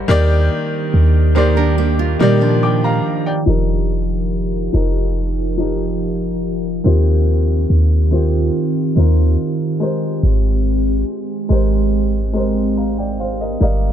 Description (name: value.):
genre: contemporary R&B.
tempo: 71 BPM.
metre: 4/4.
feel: straight.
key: unclear.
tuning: A4 = 440 Hz.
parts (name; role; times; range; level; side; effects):
clear grand piano; accompaniment; 0.0-13.9 s; Ab2 to D6; -20 LUFS; left 3 dB; none.
glassy FM pad; sustained chords; 0.0-13.9 s; Eb3 to Bb4; -21 LUFS; right 2 dB; ensemble chorus, built-in reverb.
clean 808-style bass; bass; 0.0-13.9 s; F1 to Bb2; -16 LUFS; equal; none.
nylon-string guitar; arpeggios; 1.4-3.4 s; F3 to C5; -20 LUFS; right 10 dB; ping-pong delay.
room: little or no reverb.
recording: low-pass filter.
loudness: -14 LUFS.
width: side -10 dB against mid.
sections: 0.0-3.5 A section; 3.5-13.9 B section.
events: filter sweep 3.5-13.9.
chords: 0.1 Ebmaj7; 3.5 F9sus4; 6.8 Eb69; 9.8 Abmaj9.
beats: | 0.09 0.94 1.78 2.62 | 3.47 4.32 5.16 6.00 | 6.85 7.70 8.54 9.38 | 10.23 11.08 11.92 12.77 | 13.61.